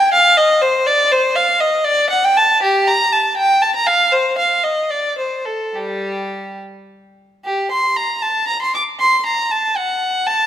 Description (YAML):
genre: classical, baroque-style suite movement for unaccompanied violin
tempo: 68-82 BPM (dotted quarters)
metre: 6/8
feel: rubato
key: G minor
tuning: A4 = 440 Hz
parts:
  - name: rich violin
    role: solo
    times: 0.0-10.5 s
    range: G3 to D6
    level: -14 LUFS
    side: equal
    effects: none
room: moderate recital hall reverb, RT60 1.8 s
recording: none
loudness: -14 LUFS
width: side -10 dB against mid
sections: 0.0-7.5 A section; 7.5-10.5 B section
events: none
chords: none